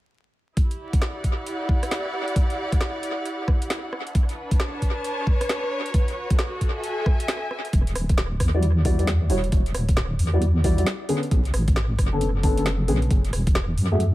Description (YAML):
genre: UK garage, two-step garage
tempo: 134 BPM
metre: 4/4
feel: swing 63% on 16ths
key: E dorian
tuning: A4 = 435 Hz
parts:
  - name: electronic kick drum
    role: drums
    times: 0.6-13.5 s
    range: none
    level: -21 LUFS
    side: equal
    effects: overdrive, studio reverb
  - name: garage drum kit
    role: drums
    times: 0.6-14.1 s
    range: hi-hat, rim click, snare drum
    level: -30 LUFS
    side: right 1 dB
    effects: overdrive, studio reverb, dub echo
  - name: rich studio string section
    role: texture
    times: 0.6-7.7 s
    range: D4 to A5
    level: -29 LUFS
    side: equal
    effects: sidechain pumping
  - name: deep soft wobble bass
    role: bass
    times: 7.7-14.1 s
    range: D1 to F#2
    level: -22 LUFS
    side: equal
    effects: chorus, tube saturation
  - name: dark grand piano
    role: stabs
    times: 8.5-14.0 s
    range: D3 to E5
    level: -26 LUFS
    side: left 1 dB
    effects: low-pass filter, dub echo
room: light reverb, small room reverb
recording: echo-heavy mix, vinyl crackle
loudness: -21 LUFS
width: side -16 dB against mid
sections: 0.6-7.7 A section; 7.7-14.1 B section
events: none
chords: 0.6 Em9; 3.9 Bm9; 5.9 F#m9; 7.7 Em9; 11.1 Bm9; 13.1 F#7(no3)